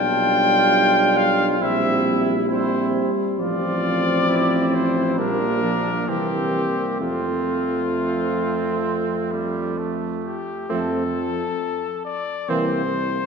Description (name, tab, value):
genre	classical, brass quintet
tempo	67 BPM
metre	4/4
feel	straight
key	F major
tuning	A4 = 440 Hz
part	warm trumpet	melody	0.0-13.3 s	F4 to G5	-24 LUFS	left 4 dB	none
part	clear trumpet	second line	0.0-12.8 s	G3 to F4	-28 LUFS	right 6 dB	none
part	mellow euphonium	accompaniment	0.0-12.8 s	E3 to G3	-27 LUFS	right 2 dB	none
part	warm French horn	accompaniment	0.0-12.8 s	A3 to D4	-25 LUFS	equal	none
part	warm tuba	bass	0.0-13.2 s	A1 to F2	-26 LUFS	right 2 dB	none
room	wet church reverb, RT60 2.6 s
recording	none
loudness	-19 LUFS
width	side -5 dB against mid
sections	0.0-10.7 A section; 10.7-13.3 B section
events	none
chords	0.0 G7/B; 1.6 C7/Bb; 3.4 F/A; 5.2 Gm/Bb; 6.1 C7; 7.0 F; 12.5 C7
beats	0.73 1.61 2.50 | 3.39 4.29 5.18 6.08 | 7.00 7.93 8.85 9.78 | 10.69 11.59 12.49